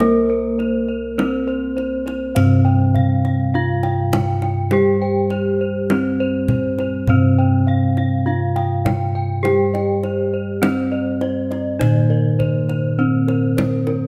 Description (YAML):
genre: Javanese gamelan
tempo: 51 BPM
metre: 4/4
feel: straight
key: C slendro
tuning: A4 = 440 Hz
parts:
  - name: gamelan-type bronze metallophone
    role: melody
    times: 0.0-14.1 s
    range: Bb3-25c to G4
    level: -24 LUFS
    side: equal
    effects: none
  - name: gamelan-type bronze metallophone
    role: accompaniment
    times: 0.0-14.1 s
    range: C3 to Bb3-25c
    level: -25 LUFS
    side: equal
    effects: none
  - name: gamelan-type bossed gongs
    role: arpeggios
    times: 0.0-14.1 s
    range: Bb4-25c to G5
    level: -30 LUFS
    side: equal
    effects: none
  - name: gamelan-type bronze metallophone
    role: arpeggios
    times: 0.0-14.1 s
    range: Bb4-25c to G5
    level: -32 LUFS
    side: equal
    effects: none
  - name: gamelan-type bossed gongs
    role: bass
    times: 0.0-14.1 s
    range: C2 to Bb4-25c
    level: -23 LUFS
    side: equal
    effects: none
  - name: kendang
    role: percussion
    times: 0.0-14.0 s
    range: none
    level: -26 LUFS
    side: equal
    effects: none
room: light reverb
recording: close, detailed microphones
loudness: -18 LUFS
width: mono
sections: 0.0-14.1 A section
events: none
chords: none